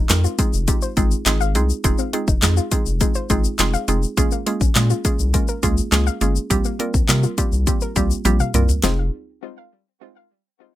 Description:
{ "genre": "dance-pop", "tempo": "103 BPM", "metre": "4/4", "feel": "straight", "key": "F minor", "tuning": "A4 = 440 Hz", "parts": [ { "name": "soft round pluck", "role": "arpeggios", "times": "0.0-9.1 s", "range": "G3 to F5", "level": "-28 LUFS", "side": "left 6 dB", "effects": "chorus, sidechain pumping, ping-pong delay" }, { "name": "round analog bass", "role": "bass", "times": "0.0-9.1 s", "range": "F1 to C3", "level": "-19 LUFS", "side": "equal", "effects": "sidechain pumping" }, { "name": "mallet-like synth pluck", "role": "accompaniment", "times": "0.1-9.1 s", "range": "G3 to Bb4", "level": "-24 LUFS", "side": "right 4 dB", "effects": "chorus, sidechain pumping" }, { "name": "pop drum kit", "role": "drums", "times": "0.1-9.0 s", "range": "handclaps, hi-hat, kick drum, snare drum, toms", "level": "-20 LUFS", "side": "equal", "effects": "none" }, { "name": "tube shaker", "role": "percussion", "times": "0.1-9.1 s", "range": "none", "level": "-30 LUFS", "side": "left 14 dB", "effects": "none" } ], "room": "little or no reverb", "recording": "none", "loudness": "-17 LUFS", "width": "side -14 dB against mid", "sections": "0.0-8.8 A section; 8.8-10.8 B section", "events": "drum fill 8.3-8.8", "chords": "0.0 Fm7; 4.2 Bbm7; 6.5 C7sus4; 8.8 Fm7", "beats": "0.10 0.68 1.26 | 1.84 2.43 3.01 3.59 | 4.17 4.76 5.34 5.92 | 6.50 7.09 7.67 8.25 | 8.84" }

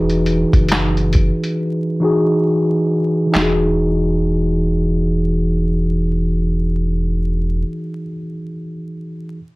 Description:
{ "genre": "lo-fi hip hop", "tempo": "68 BPM", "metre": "4/4", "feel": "swing 64% on 16ths", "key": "E major", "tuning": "A4 = 440 Hz", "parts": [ { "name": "mellow tine electric piano", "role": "accompaniment", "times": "0.0-9.4 s", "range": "E3 to B4", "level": "-18 LUFS", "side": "equal", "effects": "slow stereo tremolo, low-pass filter" }, { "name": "saturated sub bass", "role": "bass", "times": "0.0-7.6 s", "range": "E1 to F#1", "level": "-19 LUFS", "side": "equal", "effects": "none" }, { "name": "lo-fi sampler-style drum kit", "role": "drums", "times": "0.1-3.6 s", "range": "handclaps, hi-hat, kick drum, snare drum", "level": "-17 LUFS", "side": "equal", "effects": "none" } ], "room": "light reverb", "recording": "vinyl crackle", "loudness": "-15 LUFS", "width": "side -22 dB against mid", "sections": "0.0-3.3 A section; 3.3-6.9 B section", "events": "drums muted 1.6-3.3", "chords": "0.0 Emaj9", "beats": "0.70 1.58 2.46 | 3.34 4.23 5.11 5.99" }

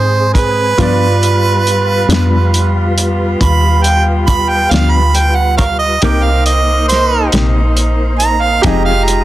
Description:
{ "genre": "slow blues", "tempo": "46 BPM (dotted quarters)", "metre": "12/8", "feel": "straight", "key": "unclear", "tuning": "A4 = 440 Hz", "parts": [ { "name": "clear harmonica", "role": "second line", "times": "0.0-9.2 s", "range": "Bb4 to B5", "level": "-14 LUFS", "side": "right 3 dB", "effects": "overdrive" }, { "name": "bright upright piano", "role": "accompaniment", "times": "0.0-9.2 s", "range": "C4 to D6", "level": "-21 LUFS", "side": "right 3 dB", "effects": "none" }, { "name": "mellow saxophone section", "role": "sustained chords", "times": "0.0-9.2 s", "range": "G3 to Ab4", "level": "-23 LUFS", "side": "left 1 dB", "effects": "none" }, { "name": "tonewheel organ", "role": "sustained chords", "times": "0.0-9.2 s", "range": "G3 to Eb5", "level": "-21 LUFS", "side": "equal", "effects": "slow rotary speaker, chorus vibrato" }, { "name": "woody FM bass", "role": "bass", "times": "0.0-9.2 s", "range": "F1 to Ab2", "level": "-14 LUFS", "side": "equal", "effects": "none" }, { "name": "warm soul drum kit", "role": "drums", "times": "0.3-9.2 s", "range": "hi-hat, kick drum, snare drum", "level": "-15 LUFS", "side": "equal", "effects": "none" }, { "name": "mellow electric guitar", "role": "accompaniment", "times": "0.8-8.9 s", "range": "G2 to Ab4", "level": "-20 LUFS", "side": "left 5 dB", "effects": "tremolo" } ], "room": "light reverb, studio reverb", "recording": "dense, heavily limited modern master", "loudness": "-10 LUFS", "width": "side -14 dB against mid", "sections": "0.0-9.2 A section", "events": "harmonica solo 0.0-9.2", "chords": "0.0 Ab; 0.8 G7; 6.0 Cm7; 8.6 Fm7", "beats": "| 0.79 2.10 3.41 4.71 | 6.02 7.33 8.64" }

